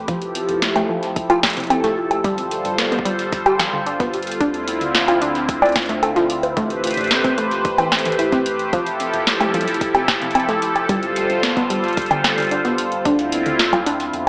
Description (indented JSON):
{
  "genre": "IDM",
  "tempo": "111 BPM",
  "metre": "4/4",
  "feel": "straight",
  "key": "unclear",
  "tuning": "A4 = 439 Hz",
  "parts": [
    { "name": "phased analog pad", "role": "sustained chords", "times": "0.0-14.3 s", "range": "D3 to C5", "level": "-20 LUFS", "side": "equal", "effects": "phaser, chorus, sidechain pumping" },
    { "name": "warm sub bass", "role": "bass", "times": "0.0-14.3 s", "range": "F1 to E2", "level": "-41 LUFS", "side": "equal", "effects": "none" },
    { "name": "warbly dusty pluck", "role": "arpeggios", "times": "0.1-14.0 s", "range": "F2 to D5", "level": "-22 LUFS", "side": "equal", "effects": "chorus, tape echo" },
    { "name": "booming analog drum machine", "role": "drums", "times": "0.1-14.2 s", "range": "bongos, congas, hi-hat, snare drum", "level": "-20 LUFS", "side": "equal", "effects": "tape echo" },
    { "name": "electronic kick drum", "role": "drums", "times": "0.1-13.8 s", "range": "none", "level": "-25 LUFS", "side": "equal", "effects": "none" }
  ],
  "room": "moderate digital room reverb, RT60 1.3 s",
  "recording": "small speaker sound",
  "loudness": "-16 LUFS",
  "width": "side -38 dB against mid",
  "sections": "0.0-14.3 A section",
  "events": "kick drops out 14.1",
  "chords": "0.1 Fmaj9; 2.2 G9sus4; 4.4 Dm9; 6.6 Am9; 8.7 Fmaj9; 10.9 G9sus4; 13.1 Dm9",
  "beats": "| 0.08 0.62 1.16 1.70 | 2.24 2.78 3.32 3.87 | 4.41 4.95 5.49 6.03 | 6.57 7.11 7.65 8.19 | 8.73 9.27 9.81 10.35 | 10.89 11.43 11.97 12.51 | 13.05 13.59 14.13"
}